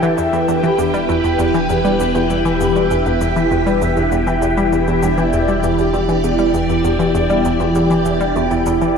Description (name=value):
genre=ambient, sequencer-driven space music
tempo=99 BPM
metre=4/4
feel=straight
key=E minor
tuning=A4 = 442 Hz
part: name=phased string machine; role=sustained chords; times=0.0-9.0 s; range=E3 to D5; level=-18 LUFS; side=equal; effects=ensemble chorus, phaser
part: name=vibraphone with soft mallets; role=arpeggios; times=0.0-8.9 s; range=B3 to G4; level=-20 LUFS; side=moving between left 3 dB and right 5 dB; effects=auto-pan, analog delay
part: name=analog pluck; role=riff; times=0.0-8.9 s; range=E2 to G3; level=-20 LUFS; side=equal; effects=chorus, analog delay
part: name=warm sub bass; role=bass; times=0.0-9.0 s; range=E1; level=-25 LUFS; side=equal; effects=none
part: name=cabasa and bongos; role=percussion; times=0.0-8.9 s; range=none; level=-32 LUFS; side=left 2 dB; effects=overdrive, analog delay
part: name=bubbling stepped-filter texture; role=texture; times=0.0-9.0 s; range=G5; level=-26 LUFS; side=left 1 dB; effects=chorus, built-in reverb
room=moderate plate reverb, RT60 2.6 s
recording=echo-heavy mix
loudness=-14 LUFS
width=side -6 dB against mid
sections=0.0-9.0 A section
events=none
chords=0.0 Em